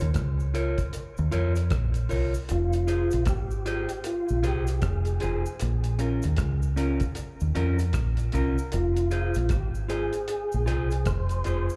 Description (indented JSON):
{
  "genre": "roots reggae",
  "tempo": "77 BPM",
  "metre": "4/4",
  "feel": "swing 62% on 16ths",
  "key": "F minor",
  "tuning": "A4 = 436 Hz",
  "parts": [
    { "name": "deep dub fingered electric bass", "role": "bass", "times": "0.0-11.7 s", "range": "F1 to F2", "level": "-28 LUFS", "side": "equal", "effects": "none" },
    { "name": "cloth-damped thuddy drum kit", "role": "drums", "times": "0.0-11.7 s", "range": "hi-hat, kick drum, rim click", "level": "-34 LUFS", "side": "equal", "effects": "none" },
    { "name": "cabasa", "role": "percussion", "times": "0.2-11.8 s", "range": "none", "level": "-52 LUFS", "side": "equal", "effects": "none" },
    { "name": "mellow electric guitar", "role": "accompaniment", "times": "0.5-11.7 s", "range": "Db4 to Db5", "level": "-35 LUFS", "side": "equal", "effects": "spring reverb, dub echo" },
    { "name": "mellow tonewheel organ", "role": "melody", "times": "2.5-11.7 s", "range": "F4 to C5", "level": "-34 LUFS", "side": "equal", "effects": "chorus vibrato, slow rotary speaker, dub echo" }
  ],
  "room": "studio ambience",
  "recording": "live gig heard through the venue's PA, club reverb",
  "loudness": "-27 LUFS",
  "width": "mono",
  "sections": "0.0-11.8 A section",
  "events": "none",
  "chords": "0.0 Bbm; 2.5 Fm; 5.6 Bbm; 8.7 Fm"
}